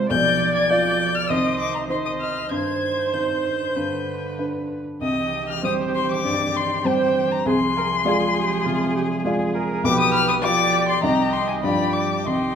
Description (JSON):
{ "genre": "quick classical-period movement for piano quintet", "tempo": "99 BPM", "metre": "4/4", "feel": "rubato", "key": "C minor", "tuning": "A4 = 439 Hz", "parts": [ { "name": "muted cello", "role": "second line", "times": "0.0-12.6 s", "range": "D3 to Ab3", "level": "-30 LUFS", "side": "right 8 dB", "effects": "none" }, { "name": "muted violin", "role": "second line", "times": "0.0-12.6 s", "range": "G4 to D5", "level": "-29 LUFS", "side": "left 3 dB", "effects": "none" }, { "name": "dark baby grand piano", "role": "accompaniment", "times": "0.0-12.6 s", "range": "B1 to Eb5", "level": "-24 LUFS", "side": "left 1 dB", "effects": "none" }, { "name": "muted viola", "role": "accompaniment", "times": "0.0-12.6 s", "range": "F4 to Eb5", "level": "-25 LUFS", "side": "right 4 dB", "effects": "none" }, { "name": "muted violin", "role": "melody", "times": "0.1-12.6 s", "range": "G5 to Ab6", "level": "-24 LUFS", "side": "left 7 dB", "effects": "none" } ], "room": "wet recital hall reverb, RT60 1.4 s", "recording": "none", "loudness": "-19 LUFS", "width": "side -7 dB against mid", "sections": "0.0-12.6 A section", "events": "none", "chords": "0.1 G7/B; 1.3 Cm; 2.5 Cm/G; 3.8 G; 5.0 Cm; 7.5 Dm7b5/C; 9.8 G7/B; 11.0 Cm; 11.6 G7", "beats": "| 0.11 0.71 1.30 1.90 | 2.52 3.15 3.77 4.40 | 5.03 5.64 6.25 6.86 | 7.46 8.06 8.66 9.25 | 9.85 10.44 11.03 11.64 | 12.26" }